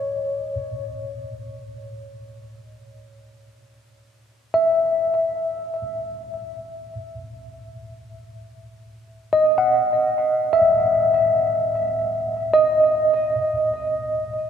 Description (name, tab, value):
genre	ambient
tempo	free time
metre	none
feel	none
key	unclear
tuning	A4 = 440 Hz
part	mellow tine electric piano	solo	0.0-14.5 s	C#5 to F#5	-19 LUFS	equal	medium stereo tremolo, tape echo
room	wet cathedral reverb, RT60 5.9 s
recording	in a vast, echoing space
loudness	-18 LUFS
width	side -8 dB against mid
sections	0.0-14.5 A section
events	none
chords	0.0 C#sus2; 0.5 N.C.; 6.9 D#m; 13.3 N.C.